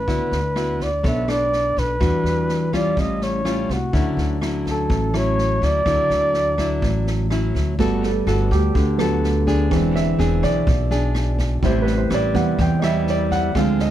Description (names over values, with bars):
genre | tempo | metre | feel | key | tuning
bossa nova | 125 BPM | 4/4 | straight | D major, G major from 7.8 s | A4 = 436 Hz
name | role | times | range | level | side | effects
mellow flugelhorn | melody | 0.0-7.3 s | F#4 to E5 | -22 LUFS | right 1 dB | none
nylon-string guitar | accompaniment | 0.0-13.9 s | A2 to C#5 | -22 LUFS | left 1 dB | none
upright bass | bass | 0.0-13.9 s | E1 to E2 | -22 LUFS | equal | none
open jazz drum kit | drums | 0.1-13.9 s | kick drum, rim click, snare drum | -28 LUFS | equal | none
warm concert grand piano | accompaniment | 7.8-13.9 s | C3 to G5 | -23 LUFS | right 4 dB | none
room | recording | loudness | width
light reverb | none | -17 LUFS | side -12 dB against mid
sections
0.0-7.8 A section; 7.8-13.9 B section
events
grand piano solo 7.8-13.9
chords
0.1 D69; 1.0 Bm9; 2.0 Em9; 3.0 A7alt; 3.9 Dmaj9; 7.8 Gmaj9; 9.7 E7b13; 11.6 Am7